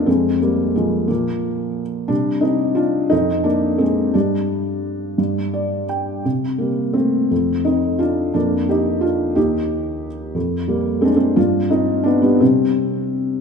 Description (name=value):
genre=classical, lyrical solo piano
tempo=58 BPM (dotted quarters)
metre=6/8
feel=rubato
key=C minor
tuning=A4 = 441 Hz
part: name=felt-muted upright piano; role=solo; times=0.0-13.4 s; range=Eb2 to G5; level=-16 LUFS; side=equal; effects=none
room=moderate recital hall reverb, RT60 1.8 s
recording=none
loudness=-16 LUFS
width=side -6 dB against mid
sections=0.0-13.4 A section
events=felt piano fill 5.2-6.2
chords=0.1 Fm; 1.1 Bb5; 2.1 Csus2; 3.1 Fm; 4.2 N.C.; 6.2 C5; 7.3 F; 8.4 Bb/F; 9.4 N.C.; 10.4 Fm; 11.4 G; 12.4 C5